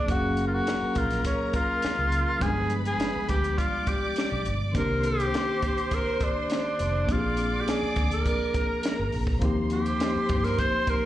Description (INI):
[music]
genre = lush 1970s-style soul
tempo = 103 BPM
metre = 4/4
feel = straight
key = unclear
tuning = A4 = 442 Hz
[part]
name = breathy tenor saxophone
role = melody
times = 0.0-11.1 s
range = Db4 to C5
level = -28 LUFS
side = equal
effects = slapback echo
[part]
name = tine electric piano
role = accompaniment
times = 0.0-11.1 s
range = Eb3 to F5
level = -30 LUFS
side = left 2 dB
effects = medium tremolo, slapback echo
[part]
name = warm studio violin section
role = second line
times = 0.1-11.1 s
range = Bb4 to D6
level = -34 LUFS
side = right 1 dB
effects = slapback echo, tape echo
[part]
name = vintage muted fingered electric bass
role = bass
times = 0.1-10.6 s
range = F1 to G2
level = -29 LUFS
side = equal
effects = none
[part]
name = compact cocktail drum kit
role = drums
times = 0.1-11.0 s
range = hi-hat, kick drum, snare drum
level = -30 LUFS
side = equal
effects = none
[sound]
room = light reverb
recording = live gig heard through the venue's PA, club reverb, nothing above 11.0 kHz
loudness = -24 LUFS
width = side -13 dB against mid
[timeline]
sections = 0.1-11.1 A section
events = none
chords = 0.1 Gbmaj7; 2.4 G7b9; 4.8 Cm9; 7.1 Bb7; 9.4 Eb69